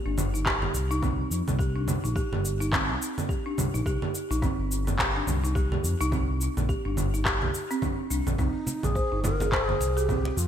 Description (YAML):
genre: organic downtempo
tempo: 106 BPM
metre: 4/4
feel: swing 58% on 16ths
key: C minor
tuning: A4 = 440 Hz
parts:
  - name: folk marimba with soft mallets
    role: arpeggios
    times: 0.1-10.2 s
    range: C4 to C5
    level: -31 LUFS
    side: right 1 dB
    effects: digital delay
  - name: smooth gliding synth bass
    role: bass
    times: 0.1-10.5 s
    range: G1 to F2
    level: -28 LUFS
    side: left 1 dB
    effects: none
  - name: electronic congas, cabasa and handclaps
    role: drums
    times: 0.2-10.5 s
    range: none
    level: -29 LUFS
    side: right 1 dB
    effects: overdrive, gated reverb
  - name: electronic kick drum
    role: drums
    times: 0.5-10.2 s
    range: none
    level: -31 LUFS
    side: left 1 dB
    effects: overdrive
  - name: breathy mellow bass bansuri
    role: melody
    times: 8.4-10.5 s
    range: Eb4 to Bb4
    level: -31 LUFS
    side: right 1 dB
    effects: vintage 12-bit sampler grit, digital delay
  - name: congas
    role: percussion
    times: 8.7-10.5 s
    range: none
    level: -36 LUFS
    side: right 2 dB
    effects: none
room: light reverb, small room ambience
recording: bright 1980s-style digital production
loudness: -24 LUFS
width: side -9 dB against mid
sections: 0.0-10.5 A section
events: none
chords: 0.0 C5; 8.4 Ab